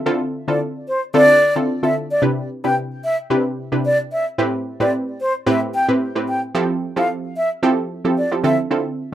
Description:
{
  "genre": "afrobeats",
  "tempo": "111 BPM",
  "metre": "4/4",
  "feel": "swing 55% on 16ths",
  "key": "unclear",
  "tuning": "A4 = 440 Hz",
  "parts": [
    { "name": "analog pluck", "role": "accompaniment", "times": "0.0-8.9 s", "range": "A2 to B4", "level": "-19 LUFS", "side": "right 1 dB", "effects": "chorus" },
    { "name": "breathy concert flute", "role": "melody", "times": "0.5-8.6 s", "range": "C5 to G5", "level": "-17 LUFS", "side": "equal", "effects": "none" }
  ],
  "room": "wet small room ambience, RT60 0.5 s",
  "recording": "rough home demo mix",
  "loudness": "-17 LUFS",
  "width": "side -12 dB against mid",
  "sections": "0.0-9.1 A section",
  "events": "none",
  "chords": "0.0 Dm7; 2.2 Cmaj7; 4.4 Am7; 6.5 Fmaj7; 8.4 Dm7"
}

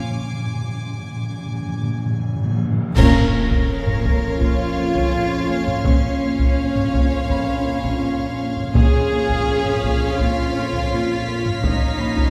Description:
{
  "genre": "cinematic, suspense film score",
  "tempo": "83 BPM",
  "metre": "4/4",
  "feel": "straight",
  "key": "Bb phrygian",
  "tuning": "A4 = 438 Hz",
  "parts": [
    { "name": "warm symphonic violin section", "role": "melody", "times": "0.0-12.3 s", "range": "F5", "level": "-37 LUFS", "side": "equal", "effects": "none" },
    { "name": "icy glass pad", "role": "sustained chords", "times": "0.0-12.3 s", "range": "F4 to F5", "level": "-34 LUFS", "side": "equal", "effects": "chorus, built-in reverb" },
    { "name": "warm French horn section", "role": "sustained chords", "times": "0.0-12.3 s", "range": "Db4 to F4", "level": "-37 LUFS", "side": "equal", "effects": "none" },
    { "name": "timpani", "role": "percussion", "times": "0.0-4.0, 8.7-9.8 s", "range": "Bb2", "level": "-26 LUFS", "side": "equal", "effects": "none" },
    { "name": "felt-muted upright piano", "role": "texture", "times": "0.0-12.3 s", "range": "Bb3 to Cb6", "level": "-38 LUFS", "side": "equal", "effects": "none" },
    { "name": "warm studio violin section", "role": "texture", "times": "0.0-2.6, 8.8-12.3 s", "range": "Ab5 to Cb7", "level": "-36 LUFS", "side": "equal", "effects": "none" },
    { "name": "cymbal swell, clash cymbals and concert bass drum", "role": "percussion", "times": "0.1-4.4 s", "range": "none", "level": "-26 LUFS", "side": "equal", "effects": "none" },
    { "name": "warm chamber violin section", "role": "second line", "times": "3.0-12.3 s", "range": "Db5", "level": "-34 LUFS", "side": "equal", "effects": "none" },
    { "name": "dark chamber viola section", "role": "accompaniment", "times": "3.0-12.3 s", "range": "Db4", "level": "-30 LUFS", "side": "equal", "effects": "none" },
    { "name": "dark trombone section", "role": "sustained chords", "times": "3.0-12.3 s", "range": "F2 to F3", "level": "-34 LUFS", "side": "equal", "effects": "none" },
    { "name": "warm studio cello section", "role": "riff", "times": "3.0-12.2 s", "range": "Bb2 to Bb3", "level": "-29 LUFS", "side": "equal", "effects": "none" },
    { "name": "dark studio cello section", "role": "bass", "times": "3.0-12.3 s", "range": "Db4 to Bb4", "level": "-26 LUFS", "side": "equal", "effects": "none" },
    { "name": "warm chamber double bass section", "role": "bass", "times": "3.0-12.3 s", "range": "Bb1", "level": "-30 LUFS", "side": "equal", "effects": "none" },
    { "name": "taiko ensemble", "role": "drums", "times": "3.0-12.3 s", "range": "none", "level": "-23 LUFS", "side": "equal", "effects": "none" }
  ],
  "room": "wet scoring stage reverb, RT60 1.7 s",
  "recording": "heard from further back in the room",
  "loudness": "-20 LUFS",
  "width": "mono",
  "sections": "0.0-3.0 A section; 3.0-12.3 B section",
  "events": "timpani fill 0.0-3.0; break 0.1-3.0; band accent 3.0-3.7",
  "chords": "0.0 N.C.; 3.0 Bbm; 8.7 Db/Bb"
}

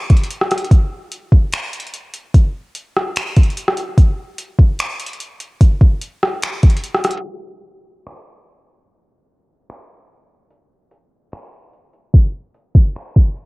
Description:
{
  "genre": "hip hop",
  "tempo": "147 BPM",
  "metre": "4/4",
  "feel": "half-time",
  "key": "none",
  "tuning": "none",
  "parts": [
    { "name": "smooth R&B drum kit", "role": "drums", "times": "0.1-13.5 s", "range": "finger snaps, hi-hat, kick drum, rim click", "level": "-12 LUFS", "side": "equal", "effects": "cassette tape" }
  ],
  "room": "little or no reverb",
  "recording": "home recording on cassette, low-pass filter",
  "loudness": "-13 LUFS",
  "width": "side -26 dB against mid",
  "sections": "0.0-7.2 A section; 7.2-13.5 B section",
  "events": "filter sweep 7.2-13.5",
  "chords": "none"
}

